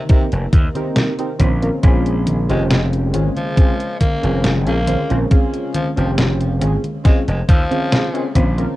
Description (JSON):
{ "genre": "vaporwave", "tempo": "69 BPM", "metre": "4/4", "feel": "straight", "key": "Bb dorian", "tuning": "A4 = 440 Hz", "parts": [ { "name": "raspy tenor saxophone", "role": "melody", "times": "0.0-8.4 s", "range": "C3 to Bb3", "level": "-26 LUFS", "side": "left 1 dB", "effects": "tape echo" }, { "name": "lush unison pad", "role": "sustained chords", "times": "0.0-8.7 s", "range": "C3 to Bb3", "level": "-29 LUFS", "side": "equal", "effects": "none" }, { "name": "warbly lo-fi synth keys", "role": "accompaniment", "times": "0.1-8.7 s", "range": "C4 to C5", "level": "-22 LUFS", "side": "equal", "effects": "analog chorus, analog delay" }, { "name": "detuned 8-bit digital drum machine", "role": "drums", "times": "0.1-8.7 s", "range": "congas, hi-hat, snare drum", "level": "-21 LUFS", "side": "equal", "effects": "overdrive" }, { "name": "electronic kick drum", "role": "drums", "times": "0.1-8.5 s", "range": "none", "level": "-13 LUFS", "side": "equal", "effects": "none" }, { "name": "gritty slap bass", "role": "bass", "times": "0.3-8.6 s", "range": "F1 to Eb2", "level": "-19 LUFS", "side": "equal", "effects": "overdrive" } ], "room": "light reverb", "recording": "rough home demo mix, cassette tape", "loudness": "-14 LUFS", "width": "side -17 dB against mid", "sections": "0.0-8.8 A section", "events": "none", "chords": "0.0 Cm7; 1.4 Bbm7", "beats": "0.09 0.96 | 1.83 2.70 3.57 4.44 | 5.31 6.18 7.05 7.92" }